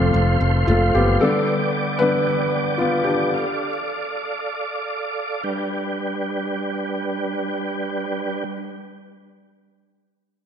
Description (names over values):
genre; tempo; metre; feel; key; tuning
pop; 113 BPM; 4/4; straight; G mixolydian; A4 = 440 Hz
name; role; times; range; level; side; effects
felt-muted upright piano; accompaniment; 0.0-3.7 s; D3 to B4; -19 LUFS; left 1 dB; none
tonewheel organ; sustained chords; 0.0-8.4 s; G3 to D6; -24 LUFS; right 2 dB; chorus vibrato, fast rotary speaker
modern bright picked electric bass; bass; 0.0-1.2 s; F1 to F#1; -18 LUFS; equal; none
room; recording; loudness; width
wet lush hall reverb, RT60 1.9 s; dreamy mix soaked in reverb; -20 LUFS; side -8 dB against mid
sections
0.0-5.5 A section; 5.5-9.7 B section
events
felt piano solo 0.0-5.5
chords
0.0 F; 1.2 G; 3.3 Dm; 5.5 G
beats
0.14 0.68 | 1.21 1.74 2.27 2.80 | 3.33 3.86 4.39 4.92 | 5.46 5.99 6.52 7.05 | 7.58 8.11